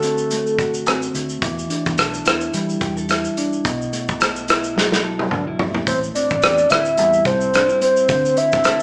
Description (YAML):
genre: indie pop, bedroom pop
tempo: 108 BPM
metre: 4/4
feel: swing 55% on 16ths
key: E minor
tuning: A4 = 440 Hz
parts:
  - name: soft octave-layered synth lead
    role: melody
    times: 0.0-1.1, 5.9-8.8 s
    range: A4 to E5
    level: -19 LUFS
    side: equal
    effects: chorus, phaser
  - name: mellow electric guitar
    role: accompaniment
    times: 0.0-8.8 s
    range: A2 to A4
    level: -27 LUFS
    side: equal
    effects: warbly pitch drift
  - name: vintage muted fingered electric bass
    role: bass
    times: 0.0-8.8 s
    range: G1 to E3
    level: -33 LUFS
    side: equal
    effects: none
  - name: loose indie drum kit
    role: drums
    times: 0.0-8.8 s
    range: hi-hat, kick drum, rim click, shaker, snare drum, toms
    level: -23 LUFS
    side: equal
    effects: none
room: moderate large studio reverb, RT60 1.1 s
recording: band playing live in one room, small speaker sound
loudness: -19 LUFS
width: mono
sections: 0.0-8.8 A section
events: drum fill 4.8-5.9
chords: 0.0 D7; 1.4 Em7; 3.6 B7sus4; 5.9 Am7; 8.1 D7(no3)